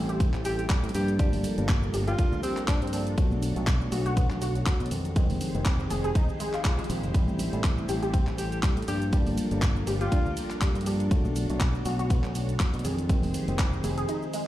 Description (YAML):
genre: deep house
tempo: 121 BPM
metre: 4/4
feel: swing 55% on 16ths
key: unclear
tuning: A4 = 439 Hz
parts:
  - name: soft string machine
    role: sustained chords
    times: 0.0-14.5 s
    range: D4 to C#5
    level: -39 LUFS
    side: equal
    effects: ensemble chorus, sidechain pumping
  - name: warbly dusty pluck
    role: arpeggios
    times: 0.0-14.4 s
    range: F#3 to Ab4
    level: -35 LUFS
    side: left 1 dB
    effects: ensemble chorus, sidechain pumping, dub echo
  - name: mellow tine electric piano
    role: stabs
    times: 0.0-14.5 s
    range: Eb3 to F#4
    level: -33 LUFS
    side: equal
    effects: overdrive, vintage 12-bit sampler grit, sidechain pumping
  - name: fingered electric bass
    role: bass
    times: 0.0-14.0 s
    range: F1 to B2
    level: -30 LUFS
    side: equal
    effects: tube saturation, sidechain pumping
  - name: house drum kit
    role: drums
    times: 0.1-14.4 s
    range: handclaps, hi-hat, ride cymbal, shaker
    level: -36 LUFS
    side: equal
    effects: none
  - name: electronic kick drum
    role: drums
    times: 0.2-13.7 s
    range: none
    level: -25 LUFS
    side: equal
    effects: none
  - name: warm alto saxophone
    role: melody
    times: 0.5-3.0, 8.4-10.3 s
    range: C4 to G4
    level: -35 LUFS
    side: equal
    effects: digital delay
  - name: congas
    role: percussion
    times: 1.2-13.9 s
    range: none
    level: -39 LUFS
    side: right 2 dB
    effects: none
room: light reverb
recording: played on a big sound system in a bare room, large studio reverb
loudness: -24 LUFS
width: side -14 dB against mid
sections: 0.0-14.5 A section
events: break 14.1-14.5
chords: 0.0 Am7; 0.9 Gm7; 3.2 Bm7; 4.9 Fm7; 7.1 Am7; 8.9 Gm7; 11.1 Bm7; 12.8 Fm7